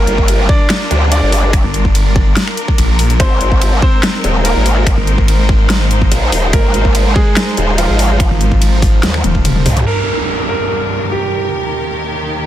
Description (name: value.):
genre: heavy wobble dubstep.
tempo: 144 BPM.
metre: 4/4.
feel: half-time.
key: G phrygian.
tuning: A4 = 439 Hz.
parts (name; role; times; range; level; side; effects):
clear baby grand piano; melody; 0.0-12.5 s; F3 to D5; -20 LUFS; right 1 dB; dub echo.
clear studio string section; sustained chords; 0.0-12.5 s; Eb2 to C5; -20 LUFS; equal; sidechain pumping, low-pass filter.
growl bass; bass; 0.0-9.8 s; Eb1 to Eb2; -13 LUFS; equal; distortion, chorus, overdrive.
dubstep drum kit; drums; 0.1-10.0 s; crash cymbal, finger snaps, hi-hat, ride cymbal, snare drum, toms; -19 LUFS; equal; low-pass filter on hats, low-pass filter on toms, low-pass filter on cymbals, soft clipping on snare, low-pass filter on snare.
electronic kick drum; drums; 0.2-9.4 s; none; -14 LUFS; equal; overdrive.
snarling distorted saw bass; bass; 1.6-9.6 s; Eb1 to Bb1; -13 LUFS; equal; distortion, overdrive.
downlifter; sound effects; 9.9-12.5 s; none; -20 LUFS; right 1 dB; none.
room: little or no reverb.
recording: dense, heavily limited modern master.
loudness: -10 LUFS.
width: side -12 dB against mid.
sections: 0.0-9.9 A section; 9.9-12.5 B section.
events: drop 0.0-9.9; drum fill 9.2-9.9.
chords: 0.0 Gm7; 3.2 Abadd9; 9.9 Gm; 11.5 Eb.